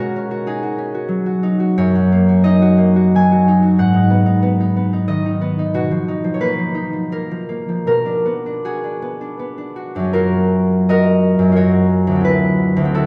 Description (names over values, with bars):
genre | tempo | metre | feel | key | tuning
classical, solo harp piece | 76-98 BPM | 3/4 | rubato | F# major | A4 = 439 Hz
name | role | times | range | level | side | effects
concert harp | solo | 0.0-13.1 s | D2 to G#5 | -16 LUFS | equal | none
room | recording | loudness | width
wet concert hall reverb, RT60 1.7 s | none | -16 LUFS | mono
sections
0.0-10.1 A section; 10.1-13.1 B section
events
none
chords
0.0 B69; 1.8 F#6; 3.8 G#m7; 5.8 Bmaj7#11; 7.9 Bm6; 10.1 F#maj7; 12.2 D9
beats
0.46 1.09 | 1.78 2.43 3.14 | 3.79 4.43 5.09 | 5.76 6.43 7.12 | 7.87 8.64 9.39 | 10.13 10.88 11.56 | 12.25 12.94